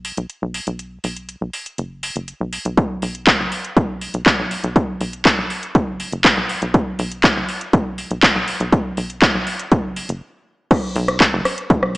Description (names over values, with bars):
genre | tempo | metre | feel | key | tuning
melodic techno | 121 BPM | 4/4 | straight | unclear | A4 = 439 Hz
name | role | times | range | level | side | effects
tight sequencer bass | bass | 0.0-12.0 s | F#1 to B1 | -26 LUFS | equal | tube saturation, sidechain pumping
house drum kit | drums | 0.0-12.0 s | crash cymbal, handclaps, hi-hat, rim click | -18 LUFS | equal | overdrive, high-pass filter on hats, high-pass filter on snare, high-pass filter on cymbals, high-pass filter on room
electronic kick drum | drums | 2.8-11.8 s | none | -17 LUFS | equal | overdrive
room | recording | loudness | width
moderate lush hall reverb, RT60 1.7 s | small speaker sound | -16 LUFS | side -22 dB against mid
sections
0.0-10.7 A section; 10.7-12.0 B section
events
build-up 0.0-10.7; stop 10.2-10.7; drop 10.7-12.0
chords
none